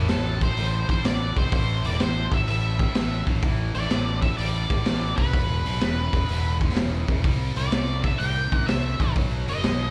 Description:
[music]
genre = blues rock power trio and southern rock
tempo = 126 BPM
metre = 4/4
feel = swing 67% on 8ths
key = unclear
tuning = A4 = 439 Hz
[part]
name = distorted electric guitar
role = riff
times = 0.0-9.9 s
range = E2 to A#3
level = -36 LUFS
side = equal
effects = overdrive, slapback echo
[part]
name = fuzz fingered electric bass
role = bass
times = 0.0-9.9 s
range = E1 to C2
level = -29 LUFS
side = equal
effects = overdrive
[part]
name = octave-fuzz lead guitar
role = melody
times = 0.1-9.9 s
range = A4 to G5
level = -32 LUFS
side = equal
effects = distortion, slapback echo
[part]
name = raw garage drum kit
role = drums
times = 0.1-9.8 s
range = hi-hat, kick drum, snare drum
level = -27 LUFS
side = equal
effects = none
[sound]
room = little or no reverb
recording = live gig heard through the venue's PA, club reverb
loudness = -24 LUFS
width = mono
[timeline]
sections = 0.0-9.9 A section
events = none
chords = 0.0 Am7; 5.3 E5; 7.3 C; 9.2 B

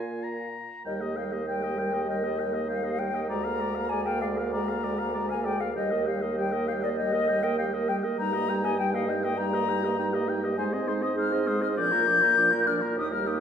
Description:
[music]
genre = quick classical-period movement for wind quintet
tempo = 99 BPM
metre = 4/4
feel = straight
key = Eb major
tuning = A4 = 441 Hz
[part]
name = mellow silver concert flute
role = melody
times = 0.0-13.4 s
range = D5 to G6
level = -28 LUFS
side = left 4 dB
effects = none
[part]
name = warm oboe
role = second line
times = 0.0-13.4 s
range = G4 to Bb5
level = -36 LUFS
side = left 2 dB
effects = none
[part]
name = dark clarinet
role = accompaniment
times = 0.0-13.4 s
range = D4 to Bb4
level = -34 LUFS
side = right 5 dB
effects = none
[part]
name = mellow French horn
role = accompaniment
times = 0.0-13.4 s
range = F3 to C4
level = -33 LUFS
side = right 1 dB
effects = none
[part]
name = mellow bassoon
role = bass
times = 0.0-13.4 s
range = D2 to Bb2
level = -31 LUFS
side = right 2 dB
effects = none
[sound]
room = wet recital hall reverb, RT60 1.4 s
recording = heard from further back in the room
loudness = -25 LUFS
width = side -8 dB against mid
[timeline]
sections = 0.9-13.4 A section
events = none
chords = 0.0 Bb5; 0.9 Eb; 3.3 Bb7/D; 5.8 Eb; 8.2 Eb/G; 10.6 Ab; 11.8 Bb

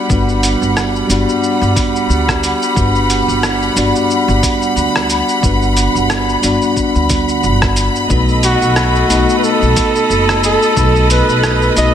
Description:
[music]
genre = sunset chillout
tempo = 90 BPM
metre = 4/4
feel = swing 56% on 16ths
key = G major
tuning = A4 = 440 Hz
[part]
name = bell-like tine electric piano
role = accompaniment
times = 0.0-11.9 s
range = G3 to D#5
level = -17 LUFS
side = moving between left 4 dB and right 5 dB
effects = auto-pan, analog delay
[part]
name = rich studio string section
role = sustained chords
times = 0.0-11.9 s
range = G3 to B5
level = -17 LUFS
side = equal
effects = none
[part]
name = upright bass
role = bass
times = 0.1-11.9 s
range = F#1 to D2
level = -17 LUFS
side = equal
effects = none
[part]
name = dusty soul sampler-style drum kit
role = drums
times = 0.1-11.9 s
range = hi-hat, rim click, shaker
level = -20 LUFS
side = equal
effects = overdrive
[part]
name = electronic kick drum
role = drums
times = 0.1-10.9 s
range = none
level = -18 LUFS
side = equal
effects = overdrive
[part]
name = clear flugelhorn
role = melody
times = 8.4-11.9 s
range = F#4 to D#5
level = -15 LUFS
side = equal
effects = analog delay
[sound]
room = wet plate reverb, RT60 1.7 s, small room ambience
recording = dreamy mix soaked in reverb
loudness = -11 LUFS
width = side -9 dB against mid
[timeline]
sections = 0.0-11.9 A section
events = none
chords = 0.0 Gmaj7; 8.1 B7

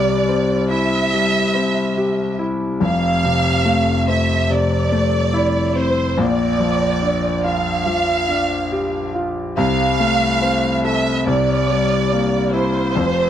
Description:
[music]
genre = pop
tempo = 71 BPM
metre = 4/4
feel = straight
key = F major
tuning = A4 = 439 Hz
[part]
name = rich studio violin section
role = melody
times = 0.0-13.3 s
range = C5 to F5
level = -20 LUFS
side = right 3 dB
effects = none
[part]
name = clear concert grand piano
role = accompaniment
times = 0.0-13.3 s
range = F1 to A4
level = -18 LUFS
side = left 2 dB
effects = none
[sound]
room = small room ambience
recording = dry, close 1970s-style studio recording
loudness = -16 LUFS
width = side -10 dB against mid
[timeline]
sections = 0.0-13.3 A section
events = none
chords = 0.0 C; 2.8 Fmaj7; 6.2 Bb6; 9.6 F/C; 11.3 C7

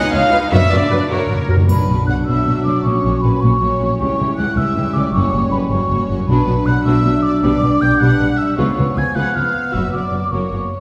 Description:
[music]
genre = cinematic, heroic adventure film score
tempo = 104 BPM (dotted quarters)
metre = 6/8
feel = straight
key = B harmonic minor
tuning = A4 = 440 Hz
[part]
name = rich studio violin section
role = melody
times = 0.0-10.8 s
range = A#4 to G#5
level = -31 LUFS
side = equal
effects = none
[part]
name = rich studio violin section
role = second line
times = 0.0-10.6 s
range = A#3 to B4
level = -30 LUFS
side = equal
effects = none
[part]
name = rich studio viola section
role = accompaniment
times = 0.0-10.6 s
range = E3 to F#5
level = -26 LUFS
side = equal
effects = none
[part]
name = rich symphonic cello section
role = bass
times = 0.0-10.6 s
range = F#2 to A#4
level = -25 LUFS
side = equal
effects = none
[part]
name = rich symphonic double bass section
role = bass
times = 0.1-10.6 s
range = F#1 to F#2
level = -22 LUFS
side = equal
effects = none
[part]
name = warm French horn section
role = sustained chords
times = 0.3-10.7 s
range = E#3 to F#4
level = -24 LUFS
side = equal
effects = none
[part]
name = dark trumpet section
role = stabs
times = 0.3-1.6 s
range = A#4 to B4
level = -32 LUFS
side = equal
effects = none
[part]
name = timpani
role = percussion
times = 0.5-2.2, 5.1-6.8, 9.7-10.3 s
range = F#2 to B2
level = -23 LUFS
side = equal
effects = none
[part]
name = mellow hollow concert flute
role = second line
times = 1.7-10.8 s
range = B5 to G#6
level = -23 LUFS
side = equal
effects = none
[part]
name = triangle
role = percussion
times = 1.7-2.4 s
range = none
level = -45 LUFS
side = equal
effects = none
[sound]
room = wet scoring stage reverb, RT60 1.6 s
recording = heard from further back in the room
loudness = -16 LUFS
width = mono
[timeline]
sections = 0.0-1.7 A section; 1.7-10.8 B section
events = timpani fill 1.1-1.7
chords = 0.0 C#7; 0.5 Bm/F#; 1.1 F#; 1.7 Bm; 2.8 F#/A#; 4.0 C#dim; 5.1 F#; 6.3 Bm; 7.4 G/B; 8.6 C#7; 9.7 Bm/F#

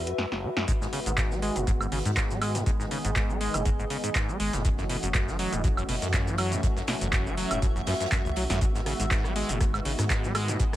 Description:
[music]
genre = acid house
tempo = 121 BPM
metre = 4/4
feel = swing 54% on 16ths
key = G# phrygian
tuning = A4 = 441 Hz
[part]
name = liquid acid bass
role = riff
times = 0.0-10.8 s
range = F#1 to G#3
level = -32 LUFS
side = equal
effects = chorus, sidechain pumping, dub echo
[part]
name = granular cloud pad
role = texture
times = 0.0-10.8 s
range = F#4 to E5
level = -37 LUFS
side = left 1 dB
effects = built-in reverb, sidechain pumping
[part]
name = electro analog drum machine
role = drums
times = 0.1-10.8 s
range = handclaps, hi-hat, rim click, shaker, snare drum, woodblock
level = -32 LUFS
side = right 1 dB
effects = none
[part]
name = warm analog pad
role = sustained chords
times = 0.7-10.8 s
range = D#3 to G#4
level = -34 LUFS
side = equal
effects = chorus, sidechain pumping
[part]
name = electronic kick drum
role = drums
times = 0.7-10.7 s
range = none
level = -28 LUFS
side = equal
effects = none
[part]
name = open jazz drum kit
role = drums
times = 0.7-10.8 s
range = hi-hat, snare drum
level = -42 LUFS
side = right 3 dB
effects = sidechain pumping on hats, high-pass filter on hats, high-pass filter on snare, high-pass filter on room
[part]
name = round analog bass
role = bass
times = 1.1-10.5 s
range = E1 to G#2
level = -32 LUFS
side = equal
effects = sidechain pumping
[sound]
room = light reverb, digital ambience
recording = none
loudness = -25 LUFS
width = side -14 dB against mid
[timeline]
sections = 0.7-10.8 A section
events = drum fill 0.2-0.7; band accent 0.6; drop 0.7-10.8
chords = 0.0 F#7(no3); 0.7 G#m7; 4.6 F#m7; 8.6 G#m7

